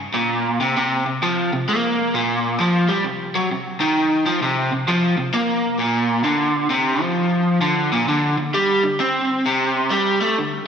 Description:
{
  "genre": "rock",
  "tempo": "131 BPM",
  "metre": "4/4",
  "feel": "swing 65% on 8ths",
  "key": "unclear",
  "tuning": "A4 = 441 Hz",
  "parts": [
    { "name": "overdriven electric guitar", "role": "solo", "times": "0.0-10.6 s", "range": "Bb2 to C4", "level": "-17 LUFS", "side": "equal", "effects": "slapback echo, analog delay" }
  ],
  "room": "wet lush hall reverb, RT60 1.9 s",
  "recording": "big arena sound",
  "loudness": "-17 LUFS",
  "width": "side -7 dB against mid",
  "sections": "0.0-10.7 A section",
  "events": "none",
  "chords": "none",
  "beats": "0.31 | 0.76 1.22 1.68 2.13 | 2.59 3.05 3.51 3.96 | 4.42 4.88 5.34 5.80 | 6.25 6.71 7.17 7.63 | 8.09 8.54 9.00 9.46 | 9.92 10.38"
}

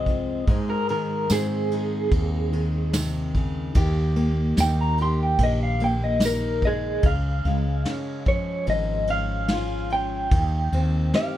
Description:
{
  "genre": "acoustic folk duo or small band",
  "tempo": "73 BPM",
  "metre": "4/4",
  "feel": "straight",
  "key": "unclear",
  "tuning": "A4 = 440 Hz",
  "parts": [
    { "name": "electric guitar through a small old amp", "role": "melody", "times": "0.0-11.4 s", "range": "Ab4 to C6", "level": "-26 LUFS", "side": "equal", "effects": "tremolo" },
    { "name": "fingerpicked steel-string acoustic guitar", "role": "accompaniment", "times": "0.0-11.4 s", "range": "F2 to Ab4", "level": "-29 LUFS", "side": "left 2 dB", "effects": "none" },
    { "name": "woody fretless electric bass", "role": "bass", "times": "0.0-11.1 s", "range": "Ab1 to Ab2", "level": "-24 LUFS", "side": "equal", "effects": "none" },
    { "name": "vintage brush drum kit", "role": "drums", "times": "0.1-11.3 s", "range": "kick drum, ride cymbal, snare drum", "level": "-25 LUFS", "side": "equal", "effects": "none" },
    { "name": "tambourine", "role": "percussion", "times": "1.3-6.4 s", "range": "none", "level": "-33 LUFS", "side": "right 6 dB", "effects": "none" }
  ],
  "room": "light reverb",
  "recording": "none",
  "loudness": "-21 LUFS",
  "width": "side -12 dB against mid",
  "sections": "0.0-7.0 A section; 7.0-11.4 B section",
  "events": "clean electric guitar solo 0.0-7.0",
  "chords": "0.5 Ab; 3.8 Eb; 7.0 Db; 10.3 Eb6",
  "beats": "| 0.48 1.30 2.12 2.94 | 3.76 4.58 5.40 6.22 | 7.04 7.86 8.68 9.50 | 10.32 11.13"
}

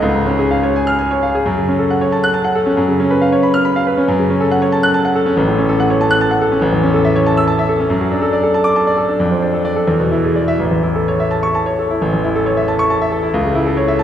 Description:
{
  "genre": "classical, virtuoso piano study",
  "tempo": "82-98 BPM (dotted quarters)",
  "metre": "6/8",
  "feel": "rubato",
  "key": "F# minor, A major from 6.6 s",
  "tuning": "A4 = 440 Hz",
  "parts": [
    { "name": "bright grand piano", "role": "solo", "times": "0.0-14.0 s", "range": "A1 to F#6", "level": "-13 LUFS", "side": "equal", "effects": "none" }
  ],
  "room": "wet concert hall reverb, RT60 2.0 s",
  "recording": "heard from further back in the room",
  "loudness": "-13 LUFS",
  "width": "side -10 dB against mid",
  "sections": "0.0-1.5 A section; 1.5-12.0 B section; 12.0-14.0 C section",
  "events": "none",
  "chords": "0.0 C#; 1.5 F#m; 2.8 C#7/F#; 4.1 F#m; 5.4 F#m/A; 6.6 A; 7.9 D/F#; 9.2 Dm/F; 9.9 E7; 10.6 A; 13.3 A/C#",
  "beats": "| 0.02 0.75 | 1.46 2.12 | 2.78 3.44 | 4.09 4.73 | 5.37 6.00 | 6.62 7.25 | 7.89 8.54 | 9.20 9.88 | 10.60 11.31 | 12.02 12.68 | 13.33 13.99"
}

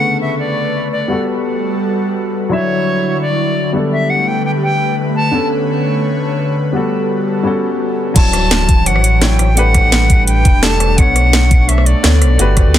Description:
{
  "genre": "liquid drum and bass",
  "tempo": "170 BPM",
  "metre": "4/4",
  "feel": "straight",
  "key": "D major",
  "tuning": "A4 = 440 Hz",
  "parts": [
    { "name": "bright reedy silver concert flute", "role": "melody", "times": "0.0-5.5, 8.2-12.8 s", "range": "C#5 to A5", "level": "-19 LUFS", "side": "left 1 dB", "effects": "dub echo" },
    { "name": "warm concert grand piano", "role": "accompaniment", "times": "0.0-12.8 s", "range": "C#3 to E5", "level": "-19 LUFS", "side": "left 2 dB", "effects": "dub echo" },
    { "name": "airy breathy pad", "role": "sustained chords", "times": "0.0-12.8 s", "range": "D3 to C#6", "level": "-19 LUFS", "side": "equal", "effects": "chorus" },
    { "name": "sub bass with octave", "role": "bass", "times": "8.2-12.8 s", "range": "D1 to D2", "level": "-13 LUFS", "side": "equal", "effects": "tube saturation" },
    { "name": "drum and bass drum kit", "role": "drums", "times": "8.2-12.8 s", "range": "crash cymbal, hi-hat, rim click, snare drum", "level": "-16 LUFS", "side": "right 1 dB", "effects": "soft clipping on snare" },
    { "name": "electronic kick drum", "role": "drums", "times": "8.2-12.6 s", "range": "none", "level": "-11 LUFS", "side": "equal", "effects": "none" }
  ],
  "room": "light reverb",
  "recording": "dense, heavily limited modern master",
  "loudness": "-11 LUFS",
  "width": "side -11 dB against mid",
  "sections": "0.0-8.2 A section; 8.2-12.8 B section",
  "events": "filter sweep on grand piano 0.0-8.2; drop 8.2-12.8",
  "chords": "0.0 Bm9; 1.1 Gmaj9; 2.5 Dmaj9; 3.7 A9sus4; 5.3 Bm9; 6.7 Gmaj9; 7.5 A13; 8.2 Dmaj9; 9.4 A9sus4; 11.0 Bm9",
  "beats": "0.04 0.39 0.75 | 1.10 1.45 1.80 2.16 | 2.51 2.86 3.22 3.57 | 3.92 4.28 4.63 4.98 | 5.33 5.69 6.04 6.39 | 6.75 7.10 7.45 7.80 | 8.16 8.51 8.86 9.22 | 9.57 9.92 10.28 10.63 | 10.98 11.33 11.69 12.04 | 12.39 12.75"
}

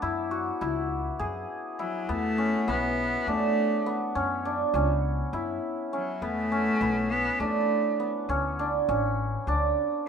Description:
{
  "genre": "contemporary instrumental, chamber music in an uneven meter",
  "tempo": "203 BPM (eighths)",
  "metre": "7/8",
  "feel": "straight",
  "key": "unclear",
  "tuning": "A4 = 438 Hz",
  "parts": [
    { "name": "cimbalom", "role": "arpeggios", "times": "0.0-10.1 s", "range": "B3 to G#4", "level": "-27 LUFS", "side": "right 1 dB", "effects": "none" },
    { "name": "upright bass", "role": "bass", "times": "0.0-9.7 s", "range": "A1 to F#2", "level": "-32 LUFS", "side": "left 1 dB", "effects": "none" },
    { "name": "bright cello", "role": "melody", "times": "1.8-10.1 s", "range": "F#3 to B3", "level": "-28 LUFS", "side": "left 1 dB", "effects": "none" }
  ],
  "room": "moderate studio ambience, RT60 0.5 s",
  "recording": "minimal, uncompressed stereo recording",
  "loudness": "-25 LUFS",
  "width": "side -6 dB against mid",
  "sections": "0.0-10.1 A section",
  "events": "none",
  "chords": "0.0 F#sus2; 2.1 E7sus4; 4.2 F#5; 6.2 E7sus4; 8.3 D5",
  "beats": "| 0.03 0.32 0.62 0.91 1.21 1.50 1.80 | 2.09 2.39 2.69 2.98 3.27 3.57 3.87 | 4.16 4.46 4.75 5.05 5.34 5.64 5.93 | 6.23 6.52 6.82 7.11 7.41 7.71 8.00 | 8.30 8.59 8.89 9.18 9.48 9.77 10.07"
}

